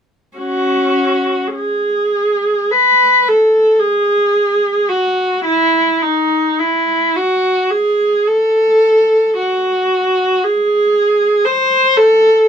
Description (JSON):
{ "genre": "classical, free, expressive piece for unaccompanied viola", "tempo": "50-60 BPM", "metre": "4/4", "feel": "rubato", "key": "unclear", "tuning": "A4 = 441 Hz", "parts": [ { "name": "rich viola", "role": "solo", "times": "0.4-12.5 s", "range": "C#4 to B#4", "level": "-11 LUFS", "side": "equal", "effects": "none" } ], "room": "light reverb", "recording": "close, detailed microphones", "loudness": "-11 LUFS", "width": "side -8 dB against mid", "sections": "0.4-12.5 A section", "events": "none", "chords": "none", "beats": "| 0.37 1.52 2.70 3.79 | 4.88 6.01 7.14 8.25 | 9.36 10.42 11.44 12.47" }